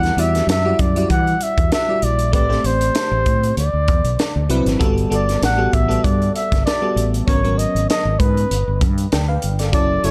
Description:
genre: polished 1980s jazz-funk pop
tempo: 97 BPM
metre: 4/4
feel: swing 54% on 16ths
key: unclear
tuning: A4 = 440 Hz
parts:
  - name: breathy flugelhorn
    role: melody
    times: 0.0-10.1 s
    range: B4 to F#5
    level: -23 LUFS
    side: equal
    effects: none
  - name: FM electric piano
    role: accompaniment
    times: 0.0-10.1 s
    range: F#3 to G5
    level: -25 LUFS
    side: equal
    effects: analog chorus
  - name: fretless electric bass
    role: bass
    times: 0.0-10.1 s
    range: F#1 to E3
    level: -22 LUFS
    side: equal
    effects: none
  - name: crisp fusion drum kit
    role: drums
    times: 0.0-10.1 s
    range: hi-hat, kick drum, snare drum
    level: -23 LUFS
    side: equal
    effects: none
room: light reverb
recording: dark, warm production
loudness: -18 LUFS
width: mono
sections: 0.0-10.1 A section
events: none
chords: 0.0 Em9; 2.3 Am7; 3.6 D13; 4.8 Gmaj9; 7.3 G#m11; 8.5 G5

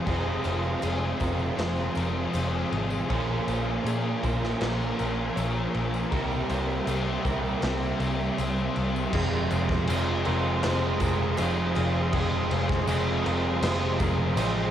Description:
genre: rock, shoegaze and dream pop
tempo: 80 BPM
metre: 4/4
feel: straight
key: F minor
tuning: A4 = 440 Hz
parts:
  - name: ethereal airy pad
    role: sustained chords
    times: 0.0-14.7 s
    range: Bb4 to Eb6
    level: -37 LUFS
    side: equal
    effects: ensemble chorus, built-in reverb
  - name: direct-recorded clean electric guitar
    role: arpeggios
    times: 0.0-14.7 s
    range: G4 to Db5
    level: -38 LUFS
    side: left 8 dB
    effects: wide subtle chorus, tape echo
  - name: fuzz guitar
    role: riff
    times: 0.0-14.7 s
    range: F2 to C4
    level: -32 LUFS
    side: left 8 dB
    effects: distortion, ensemble chorus
  - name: overdriven semi-hollow guitar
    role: riff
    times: 0.0-14.7 s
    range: F2 to G4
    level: -30 LUFS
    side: right 7 dB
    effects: reverse reverb
  - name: tight distorted guitar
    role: riff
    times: 0.0-14.7 s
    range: F2 to E4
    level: -36 LUFS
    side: equal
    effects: distortion
  - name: vintage muted picked electric bass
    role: bass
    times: 0.1-14.7 s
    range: F1 to Bb2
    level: -30 LUFS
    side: equal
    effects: tube saturation
  - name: raw garage drum kit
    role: drums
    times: 0.1-14.5 s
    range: crash cymbal, kick drum, snare drum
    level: -32 LUFS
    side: left 1 dB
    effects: cassette tape
  - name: tambourine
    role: percussion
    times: 0.1-14.5 s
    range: none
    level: -50 LUFS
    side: right 9 dB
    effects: none
room: light reverb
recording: home recording on cassette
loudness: -24 LUFS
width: side -10 dB against mid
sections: 0.0-9.1 A section; 9.1-14.7 B section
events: none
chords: 0.0 Fm7; 3.1 Bbm7; 6.1 C7; 9.1 Fm7

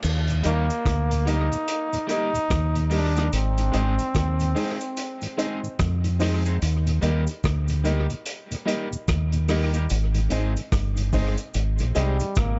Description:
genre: roots reggae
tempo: 73 BPM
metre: 4/4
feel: swing 61% on 16ths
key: Eb major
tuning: A4 = 443 Hz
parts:
  - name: deep dub fingered electric bass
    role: bass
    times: 0.0-12.6 s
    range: G1 to F2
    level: -25 LUFS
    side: equal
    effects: none
  - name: vintage drum kit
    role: drums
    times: 0.0-12.6 s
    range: crash cymbal, hi-hat, kick drum, rim click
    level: -32 LUFS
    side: equal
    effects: tape echo
  - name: cabasa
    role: percussion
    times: 0.0-12.6 s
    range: none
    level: -45 LUFS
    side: equal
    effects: none
  - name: mellow tonewheel organ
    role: accompaniment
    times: 0.3-12.3 s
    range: Eb2 to Eb4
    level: -36 LUFS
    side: equal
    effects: slow rotary speaker
  - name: electric guitar at the edge of break-up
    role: accompaniment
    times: 0.4-12.3 s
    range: G3 to Ab4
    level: -37 LUFS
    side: equal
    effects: tape echo
  - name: dark baby grand piano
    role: stabs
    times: 0.4-12.1 s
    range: Eb4 to Eb5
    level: -34 LUFS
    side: equal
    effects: none
  - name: bright trombone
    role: melody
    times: 0.5-5.8, 12.0-12.6 s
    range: G3 to Eb4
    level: -30 LUFS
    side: equal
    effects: tape echo
room: light reverb, small room ambience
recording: echo-heavy mix, nothing above 7.8 kHz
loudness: -24 LUFS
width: mono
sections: 0.0-12.6 A section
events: none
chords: 0.0 Eb; 3.3 Ab; 6.6 Eb; 9.9 Ab

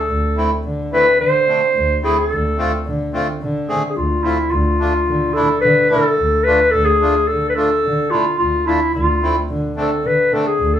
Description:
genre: klezmer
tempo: 109 BPM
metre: 4/4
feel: straight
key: D dorian sharp4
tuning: A4 = 440 Hz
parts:
  - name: warm clarinet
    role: melody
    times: 0.0-10.8 s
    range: E4 to C5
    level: -16 LUFS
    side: left 1 dB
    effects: none
  - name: dark double bass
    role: bass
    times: 0.1-10.8 s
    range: D2 to D3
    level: -21 LUFS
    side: equal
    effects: none
  - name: accordion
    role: accompaniment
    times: 0.4-10.5 s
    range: A3 to G#4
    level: -21 LUFS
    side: equal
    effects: none
room: moderate studio reverb, RT60 0.7 s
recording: band playing live in one room, small room ambience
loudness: -14 LUFS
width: side -10 dB against mid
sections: 0.0-10.8 A section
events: none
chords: 0.1 Am/D; 2.3 F/D; 4.5 Dm; 8.9 Am/D

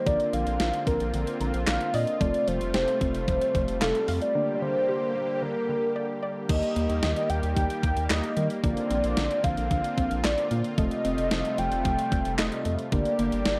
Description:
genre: synth-pop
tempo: 112 BPM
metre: 4/4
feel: straight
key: unclear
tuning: A4 = 440 Hz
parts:
  - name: warm velvety synth lead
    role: melody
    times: 0.0-13.6 s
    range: A4 to G5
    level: -30 LUFS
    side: equal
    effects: chorus, slapback echo
  - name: soft electric-piano-like synth keys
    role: accompaniment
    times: 0.0-13.6 s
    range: A3 to Bb4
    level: -36 LUFS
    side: equal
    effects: chorus
  - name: lush unison pad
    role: sustained chords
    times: 0.0-13.6 s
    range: C3 to G4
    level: -36 LUFS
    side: equal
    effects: chorus
  - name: soft round pluck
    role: arpeggios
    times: 0.1-13.6 s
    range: D3 to F5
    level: -38 LUFS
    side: equal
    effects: chorus, slapback echo
  - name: round analog bass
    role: bass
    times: 0.1-13.6 s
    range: F1 to Eb3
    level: -33 LUFS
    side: equal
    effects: none
  - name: clean 12-bit digital drum machine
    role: drums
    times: 0.1-13.6 s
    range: crash cymbal, handclaps, hi-hat, kick drum, snare drum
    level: -32 LUFS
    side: equal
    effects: overdrive
room: light reverb, digital ambience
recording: none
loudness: -26 LUFS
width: mono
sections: 0.0-6.5 A section; 6.5-13.6 B section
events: none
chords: 0.1 Bbadd9; 2.2 Fadd9; 4.4 Gm; 6.5 Eb; 8.6 Bbadd9; 10.8 Fadd9; 12.9 Gm

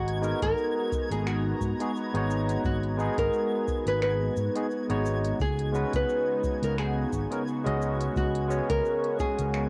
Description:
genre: sunset chillout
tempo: 87 BPM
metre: 4/4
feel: swing 55% on 16ths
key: G# minor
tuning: A4 = 440 Hz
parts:
  - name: nylon-string guitar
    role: melody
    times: 0.0-9.7 s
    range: F#4 to B4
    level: -32 LUFS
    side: equal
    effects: cassette tape, analog delay
  - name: lush unison pad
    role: sustained chords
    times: 0.0-9.7 s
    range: C#3 to A#5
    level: -36 LUFS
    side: equal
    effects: chorus, phaser, cassette tape
  - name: fingered electric bass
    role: bass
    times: 0.0-9.7 s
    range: G#1 to G#2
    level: -32 LUFS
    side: equal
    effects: none
  - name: twinkling granular texture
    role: texture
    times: 0.0-9.7 s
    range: G#6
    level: -49 LUFS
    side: equal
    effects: built-in reverb, cassette tape
  - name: deep house drum kit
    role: drums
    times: 0.1-9.7 s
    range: cabasa, finger snaps, hi-hat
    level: -44 LUFS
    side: equal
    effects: cassette tape
  - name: barky tine electric piano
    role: accompaniment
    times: 0.2-9.7 s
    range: G#3 to D#5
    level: -34 LUFS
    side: equal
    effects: cassette tape
  - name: electronic kick drum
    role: drums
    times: 0.4-9.3 s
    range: none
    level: -36 LUFS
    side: equal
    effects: cassette tape
room: moderate booth ambience, RT60 0.2 s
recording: home recording on cassette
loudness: -28 LUFS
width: mono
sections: 0.0-9.7 A section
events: none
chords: 0.0 G#m9

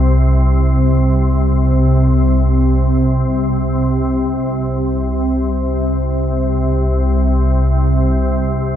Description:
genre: ambient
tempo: free time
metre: none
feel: none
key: unclear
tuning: A4 = 439 Hz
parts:
  - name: organ-like drone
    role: solo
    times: 0.0-8.8 s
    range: C2 to C3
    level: -13 LUFS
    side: equal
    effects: ensemble chorus, built-in reverb, ping-pong delay
room: wet huge ambient reverb, RT60 8.0 s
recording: dark, warm production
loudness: -13 LUFS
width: side -10 dB against mid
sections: 0.0-4.2 A section; 4.2-8.8 B section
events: none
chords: none

